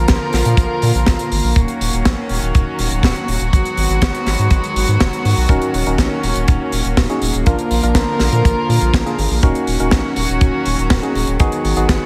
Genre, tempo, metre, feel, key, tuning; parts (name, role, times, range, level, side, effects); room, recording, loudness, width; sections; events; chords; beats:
italo disco; 122 BPM; 4/4; straight; Eb minor; A4 = 441 Hz
warm chamber string section; sustained chords; 0.0-12.1 s; D3 to Bb4; -23 LUFS; equal
round analog bass; bass; 0.0-12.0 s; Eb1 to Bb2; -21 LUFS; equal
kick drum; drums; 0.1-12.0 s; -17 LUFS; equal; studio reverb
tight funk drum kit; drums; 0.1-12.0 s; hi-hat, snare drum; -24 LUFS; equal; studio reverb, gated reverb
barky tine electric piano; stabs; 5.5-12.1 s; Bb3 to Bb4; -23 LUFS; equal
light reverb, small room ambience; -16 LUFS; mono
0.0-12.1 A section
0.0 Bb; 1.6 Ebm7; 3.5 Abm7; 5.5 Ebm7; 7.5 Bb; 9.4 Ebm7; 11.4 Abm7
0.09 0.58 1.07 | 1.56 2.06 2.55 3.04 | 3.53 4.02 4.51 5.00 | 5.50 5.99 6.48 6.97 | 7.46 7.96 8.45 8.94 | 9.43 9.92 10.41 10.91 | 11.40 11.89